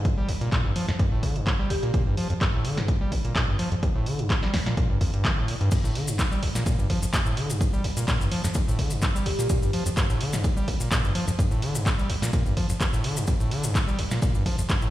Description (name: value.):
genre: acid house.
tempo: 127 BPM.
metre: 4/4.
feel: swing 54% on 16ths.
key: G minor.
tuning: A4 = 443 Hz.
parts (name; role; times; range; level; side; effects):
overdriven acid bass; riff; 0.0-14.9 s; G1 to G3; -26 LUFS; equal; distortion, tube saturation, sidechain pumping, dub echo.
punchy analog drum machine; drums; 0.0-14.8 s; crash cymbal, handclaps, hi-hat, ride cymbal, snare drum; -31 LUFS; equal; none.
electronic kick drum; drums; 0.1-14.8 s; none; -25 LUFS; equal; none.
vibraphone with soft mallets; melody; 1.7-1.9, 9.3-9.5 s; G4; -34 LUFS; equal; dub echo.
maracas; percussion; 5.7-14.9 s; none; -36 LUFS; left 3 dB; none.
room: moderate plate reverb, RT60 1.5 s, digital ambience.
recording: played on a big sound system in a bare room, stone room reverb.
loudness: -22 LUFS.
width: side -14 dB against mid.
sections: 0.0-14.9 A section.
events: none.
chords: 0.0 G5.